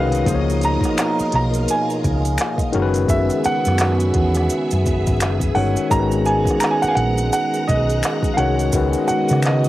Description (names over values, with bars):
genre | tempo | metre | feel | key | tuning
R&B, neo-soul | 85 BPM | 4/4 | swing 60% on 16ths | unclear | A4 = 442 Hz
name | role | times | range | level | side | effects
clear grand piano | melody | 0.0-9.7 s | D#5 to A#5 | -23 LUFS | right 2 dB | cassette tape
overdriven tine electric piano | accompaniment | 0.0-9.7 s | D#3 to C#5 | -22 LUFS | left 3 dB | auto-pan, cassette tape
phased string machine | sustained chords | 0.0-9.7 s | B2 to A#5 | -28 LUFS | equal | ensemble chorus, phaser, cassette tape
hollow-body short-scale fingered electric bass | bass | 0.0-9.7 s | F#1 to C#3 | -20 LUFS | equal | transformer saturation
organic electronic drum kit | drums | 0.1-9.7 s | handclaps, hi-hat, kick drum, snare drum | -23 LUFS | equal | overdrive, cassette tape
maracas and finger snaps | percussion | 0.1-9.7 s | none | -29 LUFS | right 1 dB | none
mellow trombone section | stabs | 0.3-9.7 s | B2 to G#4 | -25 LUFS | right 2 dB | cassette tape
room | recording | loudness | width
light reverb | home recording on cassette | -16 LUFS | side -15 dB against mid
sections
0.0-9.7 A section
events
none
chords
0.3 C#13; 2.7 F#9sus4; 5.9 G#m9; 8.7 C#9sus4